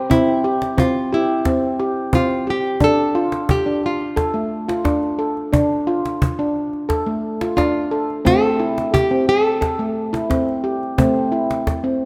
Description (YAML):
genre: world meditative, meditative tuned percussion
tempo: 88 BPM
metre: 4/4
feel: straight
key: D minor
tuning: A4 = 440 Hz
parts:
  - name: nylon-string guitar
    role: melody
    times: 0.0-10.6 s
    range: E4 to C5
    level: -23 LUFS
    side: equal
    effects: none
  - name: handpan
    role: arpeggios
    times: 0.0-12.1 s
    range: A3 to A4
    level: -21 LUFS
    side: equal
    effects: none
  - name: cajon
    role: percussion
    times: 0.1-11.8 s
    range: none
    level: -24 LUFS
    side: equal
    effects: none
room: wet echo chamber reverb, RT60 2.2 s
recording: none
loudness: -19 LUFS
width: mono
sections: 0.0-2.8 A section; 2.8-12.1 B section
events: none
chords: 0.0 C; 2.8 Dm; 8.3 Am